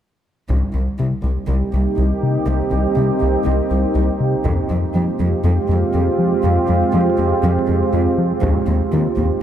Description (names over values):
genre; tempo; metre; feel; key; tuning
cinematic, hybrid orchestral and electronic film score; 121 BPM; 4/4; straight; C minor; A4 = 442 Hz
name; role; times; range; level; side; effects
deep dark ambient pad; sustained chords; 1.4-9.4 s; Ab3 to G4; -19 LUFS; right 2 dB; chorus, built-in reverb
round analog bass; riff; 0.5-9.3 s; C2 to F3; -19 LUFS; left 2 dB; none
warm symphonic cello section; bass; 0.5-9.3 s; C2 to F2; -24 LUFS; right 2 dB; none
solo taiko drums; drums; 0.5-1.5, 4.5-5.4, 8.4-9.4 s; none; -25 LUFS; equal; none
room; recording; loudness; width
moderate scoring stage reverb, RT60 2.0 s; none; -15 LUFS; side -10 dB against mid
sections
0.5-9.4 A section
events
build-up 0.5-9.4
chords
0.5 Cm7; 4.5 Fmadd9; 8.4 Ebadd9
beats
| 0.50 0.99 1.49 1.98 | 2.48 2.98 3.47 3.97 | 4.46 4.96 5.46 5.95 | 6.45 6.94 7.44 7.93 | 8.43 8.93 9.42